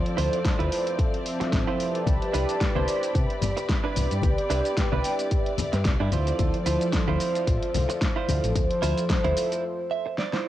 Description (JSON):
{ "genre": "nu-disco, nu disco", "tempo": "111 BPM", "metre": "4/4", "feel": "swing 55% on 16ths", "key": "unclear", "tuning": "A4 = 439 Hz", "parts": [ { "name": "warm analog pad", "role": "accompaniment", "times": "0.0-9.5 s", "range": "F3 to A5", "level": "-28 LUFS", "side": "equal", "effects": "chorus, cassette tape, analog delay" }, { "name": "clear symphonic string section", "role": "sustained chords", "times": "0.0-9.6 s", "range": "F3 to B5", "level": "-36 LUFS", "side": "left 3 dB", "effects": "sidechain pumping, cassette tape" }, { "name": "pop drum kit", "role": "drums", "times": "0.1-10.4 s", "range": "hi-hat, shaker, snare drum", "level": "-32 LUFS", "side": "left 1 dB", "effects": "small room ambience, cassette tape" }, { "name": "direct-recorded clean electric guitar", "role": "riff", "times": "0.2-10.5 s", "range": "D4 to E5", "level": "-31 LUFS", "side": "right 7 dB", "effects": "lush chorus, low-pass filter, cassette tape, analog delay" }, { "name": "fingered electric bass with an envelope filter", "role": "bass", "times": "0.2-9.3 s", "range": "G1 to C3", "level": "-27 LUFS", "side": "equal", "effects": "transformer saturation" }, { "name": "electronic kick drum", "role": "drums", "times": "0.4-9.2 s", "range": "none", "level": "-26 LUFS", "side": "equal", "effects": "small room ambience, cassette tape" }, { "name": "congas", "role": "percussion", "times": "2.1-9.3 s", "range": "none", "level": "-33 LUFS", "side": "left 6 dB", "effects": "none" } ], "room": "light reverb", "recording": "home recording on cassette", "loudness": "-22 LUFS", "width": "side -13 dB against mid", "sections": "0.0-10.5 A section", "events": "break 9.6-10.5; clean electric guitar fill 9.6-10.5; drum fill 10.2-10.5", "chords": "0.0 Dm9; 2.1 Cmaj9; 6.1 Dm9" }